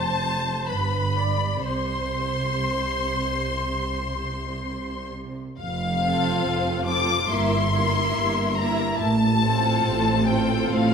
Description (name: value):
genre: classical, slow romantic movement for string orchestra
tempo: 59-71 BPM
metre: 4/4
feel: rubato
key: F major from 5.6 s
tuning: A4 = 444 Hz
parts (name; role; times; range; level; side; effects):
- rich studio violin section; melody; 0.0-10.9 s; F5 to D6; -26 LUFS; left 5 dB; none
- warm studio violin section; second line; 0.0-10.9 s; A4 to C6; -31 LUFS; left 3 dB; none
- rich chamber viola section; accompaniment; 0.0-10.9 s; Bb3 to D5; -29 LUFS; right 2 dB; none
- dark chamber cello section; bass; 0.0-10.9 s; F2 to C3; -27 LUFS; right 2 dB; none
- rich chamber double bass section; bass; 0.0-10.9 s; F1 to C2; -29 LUFS; right 4 dB; none
room: moderate scoring stage reverb, RT60 2.0 s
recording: none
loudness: -21 LUFS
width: side -6 dB against mid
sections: 0.0-5.6 A section; 5.6-10.9 B section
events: none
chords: 0.0 F; 0.7 G; 1.7 N.C.; 5.6 F; 7.3 Edim/G; 9.0 F/A